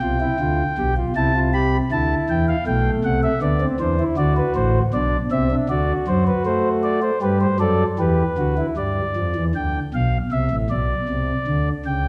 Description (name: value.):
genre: classical, baroque-style 3-part fugue for pipe organ.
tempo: 79 BPM.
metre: 4/4.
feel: straight.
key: C major.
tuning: A4 = 440 Hz.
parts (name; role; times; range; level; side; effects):
chamber organ, principal; solo; 0.0-12.1 s; A1 to B5; -20 LUFS; equal; none.
room: wet scoring stage reverb, RT60 1.4 s.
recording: none.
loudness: -20 LUFS.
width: mono.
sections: 0.0-8.8 A section; 8.8-12.1 B section.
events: none.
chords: 0.0 G7; 1.2 C; 2.7 G/B; 4.2 D; 5.7 D7; 7.2 G; 8.8 G7; 10.3 C.